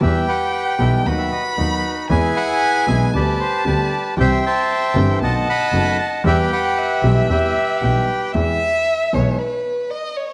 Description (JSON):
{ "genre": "tango", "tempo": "115 BPM", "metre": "4/4", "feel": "rubato", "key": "E harmonic minor", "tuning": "A4 = 438 Hz", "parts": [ { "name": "bandoneon", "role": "melody", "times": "0.0-8.3 s", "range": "D#4 to B5", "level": "-22 LUFS", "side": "equal", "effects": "none" }, { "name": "warm violin", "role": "second line", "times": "0.0-10.3 s", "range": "B4 to B5", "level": "-25 LUFS", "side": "equal", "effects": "none" }, { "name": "warm concert grand piano", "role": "accompaniment", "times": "0.0-9.4 s", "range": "F#1 to G#4", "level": "-25 LUFS", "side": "equal", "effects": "none" }, { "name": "clear double bass", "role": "bass", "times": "0.0-9.4 s", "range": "F#1 to E2", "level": "-22 LUFS", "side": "equal", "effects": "none" } ], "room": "wet echo chamber reverb, RT60 1.7 s, small room ambience", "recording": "none", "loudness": "-18 LUFS", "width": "mono", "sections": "0.0-8.4 A section; 8.4-10.3 B section", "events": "violin solo 8.4-10.3", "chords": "0.0 Em; 1.1 B/D#; 2.1 E; 3.1 G/D; 4.2 C; 5.2 B7; 6.3 Em; 8.4 E", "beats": "| 0.02 0.54 1.06 1.58 | 2.10 2.62 3.14 3.66 | 4.18 4.70 5.22 5.74 | 6.26 6.78 7.30 7.83 | 8.35 8.87 9.40 9.92" }